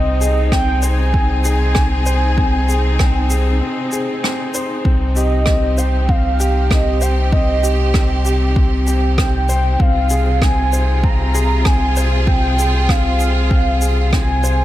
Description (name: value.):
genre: piano and strings electronica.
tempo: 97 BPM.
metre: 4/4.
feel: straight.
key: C minor.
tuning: A4 = 439 Hz.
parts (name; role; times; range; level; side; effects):
warm velvety synth lead; melody; 0.0-14.6 s; Eb5 to Bb5; -22 LUFS; right 1 dB; chorus.
clear symphonic string section; sustained chords; 0.0-14.6 s; C3 to Ab4; -24 LUFS; equal; sidechain pumping.
warm upright piano; riff; 0.0-14.6 s; C4 to C5; -22 LUFS; left 1 dB; ping-pong delay.
warm sub bass; bass; 0.0-14.6 s; C2; -17 LUFS; equal; sidechain pumping.
shaker and rim click; drums; 0.2-14.6 s; none; -24 LUFS; right 1 dB; none.
electronic kick drum; drums; 0.5-14.3 s; none; -16 LUFS; equal; none.
room: little or no reverb.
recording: none.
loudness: -13 LUFS.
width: side -14 dB against mid.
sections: 0.0-14.6 A section.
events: break 3.6-4.8.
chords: 0.0 Ab/C; 4.8 Cm; 9.8 Fm/C.